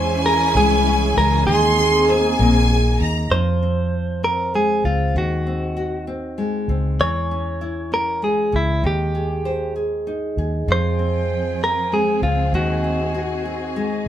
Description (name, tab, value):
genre	six-eight pop ballad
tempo	65 BPM (dotted quarters)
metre	6/8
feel	straight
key	Ab major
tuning	A4 = 442 Hz
part	direct-recorded clean electric guitar	melody	0.0-13.4 s	Fb4 to Db5	-21 LUFS	right 1 dB	none
part	bright symphonic violin section	second line	0.0-3.3 s	Ab5 to C6	-22 LUFS	left 1 dB	none
part	nylon-string guitar	accompaniment	0.0-14.1 s	Eb3 to C5	-24 LUFS	left 2 dB	none
part	warm symphonic string section	sustained chords	0.0-3.3, 10.7-14.1 s	Fb3 to G5	-26 LUFS	right 2 dB	none
part	vintage muted fingered electric bass	bass	0.0-14.0 s	Bb1 to F2	-22 LUFS	equal	none
room	moderate small room reverb, RT60 0.5 s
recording	band playing live in one room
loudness	-17 LUFS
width	side -11 dB against mid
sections	0.0-3.3 A section; 3.3-14.1 B section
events	none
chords	0.0 Dbm/Fb; 1.5 Abadd9/Eb; 3.3 Fm; 5.2 Ab7/Eb; 7.0 Dbm/Fb; 8.8 Ab/Eb; 10.7 Fmadd9; 12.5 Ab7/Eb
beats	0.55 | 1.47 2.39 | 3.31 4.23 | 5.15 6.07 | 6.99 7.92 | 8.84 9.76 | 10.68 11.61 | 12.53 13.45